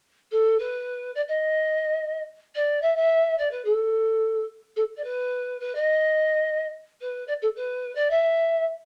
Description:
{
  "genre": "andean folk",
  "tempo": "108 BPM",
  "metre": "2/4",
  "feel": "straight",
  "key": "unclear",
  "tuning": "A4 = 440 Hz",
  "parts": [
    { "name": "polished pan flute", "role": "melody", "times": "0.3-8.6 s", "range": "A4 to E5", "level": "-25 LUFS", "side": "equal", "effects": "none" }
  ],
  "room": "moderate small room reverb, RT60 0.5 s",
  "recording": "none",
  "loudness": "-25 LUFS",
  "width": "mono",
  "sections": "0.3-8.8 A section",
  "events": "none",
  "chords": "none"
}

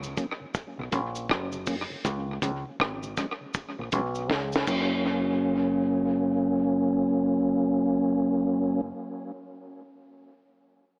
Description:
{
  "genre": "roots reggae",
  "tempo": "80 BPM",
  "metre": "4/4",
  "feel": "swing 61% on 16ths",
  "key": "F# major",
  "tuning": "A4 = 439 Hz",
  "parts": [
    { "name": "mellow tonewheel organ", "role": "accompaniment", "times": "0.0-8.8 s", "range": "F#2 to C#4", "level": "-28 LUFS", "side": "equal", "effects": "chorus vibrato, stopped rotary speaker, tape echo" },
    { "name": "deep dub fingered electric bass", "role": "bass", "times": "0.0-8.9 s", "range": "F#1 to C#2", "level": "-37 LUFS", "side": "equal", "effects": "none" },
    { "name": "cabasa", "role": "percussion", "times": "0.0-5.4 s", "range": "none", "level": "-47 LUFS", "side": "equal", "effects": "none" },
    { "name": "deep reggae drum kit", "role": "drums", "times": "0.2-4.9 s", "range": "crash cymbal, hi-hat, kick drum, rim click, snare drum", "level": "-32 LUFS", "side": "equal", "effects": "tape echo" }
  ],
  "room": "moderate plate reverb, RT60 2.6 s",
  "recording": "AM radio sound",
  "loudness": "-27 LUFS",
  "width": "mono",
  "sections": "0.0-5.1 A section; 5.1-8.1 B section",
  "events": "drum fill 4.3-5.1",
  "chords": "0.0 F#; 2.0 C#5; 4.7 F#"
}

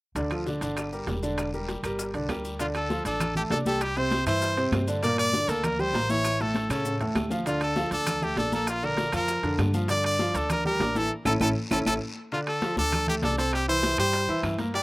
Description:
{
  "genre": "latin, salsa",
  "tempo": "198 BPM",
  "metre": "4/4",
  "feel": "straight",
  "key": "D minor",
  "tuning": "A4 = 440 Hz",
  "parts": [
    { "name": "upright bass", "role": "bass", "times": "0.1-14.8 s", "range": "E1 to A2", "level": "-32 LUFS", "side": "equal", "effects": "none" },
    { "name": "clear grand piano", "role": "accompaniment", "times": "0.2-14.8 s", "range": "A2 to D6", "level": "-29 LUFS", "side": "right 1 dB", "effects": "none" },
    { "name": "bongos", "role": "percussion", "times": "0.2-14.8 s", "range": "none", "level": "-39 LUFS", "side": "left 4 dB", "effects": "none" },
    { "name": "guiro", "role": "percussion", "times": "0.2-14.8 s", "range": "none", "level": "-44 LUFS", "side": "left 2 dB", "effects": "none" },
    { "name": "maracas", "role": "percussion", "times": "0.2-11.9 s", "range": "none", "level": "-41 LUFS", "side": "left 4 dB", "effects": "none" },
    { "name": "timbales", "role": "percussion", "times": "0.2-14.7 s", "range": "none", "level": "-36 LUFS", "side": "right 3 dB", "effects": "none" },
    { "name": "claves", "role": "percussion", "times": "0.3-14.6 s", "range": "none", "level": "-41 LUFS", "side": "right 1 dB", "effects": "none" },
    { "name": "brilliant trumpet", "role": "melody", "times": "2.6-14.8 s", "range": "F4 to D5", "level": "-27 LUFS", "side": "equal", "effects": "none" },
    { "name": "congas", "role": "percussion", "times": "2.6-14.8 s", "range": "none", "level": "-32 LUFS", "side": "left 2 dB", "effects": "none" }
  ],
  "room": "little or no reverb",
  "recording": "recorded outdoors, with no room sound",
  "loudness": "-24 LUFS",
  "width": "side -21 dB against mid",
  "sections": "0.2-2.6 A section; 2.6-12.3 B section; 12.3-14.8 B section",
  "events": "drum fill 6.2-7.5; band accent 11.1-12.3",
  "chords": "0.2 Dm; 0.8 Em7b5; 2.0 Gm; 2.6 Dm; 3.8 C; 5.0 Gm; 6.2 A; 7.5 Dm; 8.7 Bb; 9.9 Gm7; 11.1 A; 12.3 Dm; 13.5 C"
}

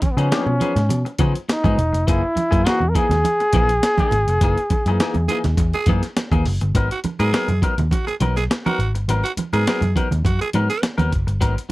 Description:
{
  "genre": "funk",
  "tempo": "103 BPM",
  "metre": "4/4",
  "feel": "straight",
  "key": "G# minor",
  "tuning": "A4 = 445 Hz",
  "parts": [
    { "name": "clear trombone", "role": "melody", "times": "0.0-6.2 s", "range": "B3 to A#4", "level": "-21 LUFS", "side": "equal", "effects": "none" },
    { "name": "clean electric guitar", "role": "accompaniment", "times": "0.0-11.7 s", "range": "E3 to A#4", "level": "-25 LUFS", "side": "left 3 dB", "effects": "none" },
    { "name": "vintage muted picked electric bass", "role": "bass", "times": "0.0-11.5 s", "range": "E1 to C#3", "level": "-20 LUFS", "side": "equal", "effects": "none" },
    { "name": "breakbeat sampler-style drum kit", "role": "drums", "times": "0.0-11.7 s", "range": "hi-hat, kick drum, snare drum", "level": "-22 LUFS", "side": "equal", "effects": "none" },
    { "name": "congas", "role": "percussion", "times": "0.0-11.7 s", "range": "none", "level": "-26 LUFS", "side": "right 4 dB", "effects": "none" },
    { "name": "growling tenor saxophone", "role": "second line", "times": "5.3-10.8 s", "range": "F#4 to G#4", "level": "-24 LUFS", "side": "right 4 dB", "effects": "none" }
  ],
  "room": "little or no reverb",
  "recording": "dry, close 1970s-style studio recording",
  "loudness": "-17 LUFS",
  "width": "side -18 dB against mid",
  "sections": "0.0-6.7 A section; 6.7-11.7 B section",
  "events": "band accent 4.4-6.7",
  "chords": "0.0 C#9; 2.1 F#13; 6.7 G#m9"
}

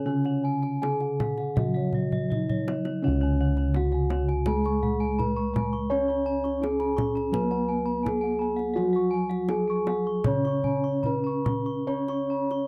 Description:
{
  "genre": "Javanese gamelan",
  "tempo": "68-84 BPM",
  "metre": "4/4",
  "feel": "straight",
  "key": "Db slendro",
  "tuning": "A4 = 440 Hz",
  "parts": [
    { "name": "gamelan-type bronze metallophone", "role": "melody", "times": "0.0-12.7 s", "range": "Db4 to Db5", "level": "-31 LUFS", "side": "equal", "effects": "slapback echo" },
    { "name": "gamelan-type bronze metallophone", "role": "accompaniment", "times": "0.0-12.7 s", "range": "Db3 to Db4", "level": "-32 LUFS", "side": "equal", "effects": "none" },
    { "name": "gamelan-type bossed gongs", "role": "arpeggios", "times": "0.0-12.6 s", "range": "Db5 to Db6", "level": "-40 LUFS", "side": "equal", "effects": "none" },
    { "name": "gamelan-type bronze metallophone", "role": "arpeggios", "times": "0.0-12.7 s", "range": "Db5 to Db6", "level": "-39 LUFS", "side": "equal", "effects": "none" },
    { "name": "gamelan-type bossed gongs", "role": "bass", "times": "0.0-12.7 s", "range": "Db2 to Db5", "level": "-32 LUFS", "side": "equal", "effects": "none" },
    { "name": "kendang", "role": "percussion", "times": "0.2-12.6 s", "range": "none", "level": "-34 LUFS", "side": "equal", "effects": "none" }
  ],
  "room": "light reverb",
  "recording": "dry, close 1970s-style studio recording",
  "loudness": "-26 LUFS",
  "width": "mono",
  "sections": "0.0-3.0 A section; 3.0-12.7 B section",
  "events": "drum fill 2.1-3.0",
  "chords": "none"
}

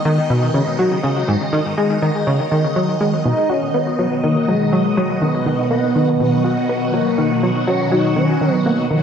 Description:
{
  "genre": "ambient, sequencer-driven space music",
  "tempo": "122 BPM",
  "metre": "4/4",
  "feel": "straight",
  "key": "unclear",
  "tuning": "A4 = 440 Hz",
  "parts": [
    { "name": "phased string machine", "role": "sustained chords", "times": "0.0-9.0 s", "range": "B2 to D#5", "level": "-20 LUFS", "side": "right 1 dB", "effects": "ensemble chorus, phaser" },
    { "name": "plucky analog bass", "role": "riff", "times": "0.1-9.0 s", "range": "G#2 to F#4", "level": "-18 LUFS", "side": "equal", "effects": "lush chorus, vintage 12-bit sampler grit, ping-pong delay" },
    { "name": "expressive synth lead", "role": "melody", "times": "3.2-9.0 s", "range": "F#3 to D#4", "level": "-19 LUFS", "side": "equal", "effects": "lush chorus, ping-pong delay" }
  ],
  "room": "wet plate reverb, RT60 2.8 s",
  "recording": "worn, warbling old tape, cassette tape, warbly pitch drift",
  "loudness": "-15 LUFS",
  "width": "side -7 dB against mid",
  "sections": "0.0-9.0 A section",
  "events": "none",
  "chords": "0.0 G#m7; 3.3 B"
}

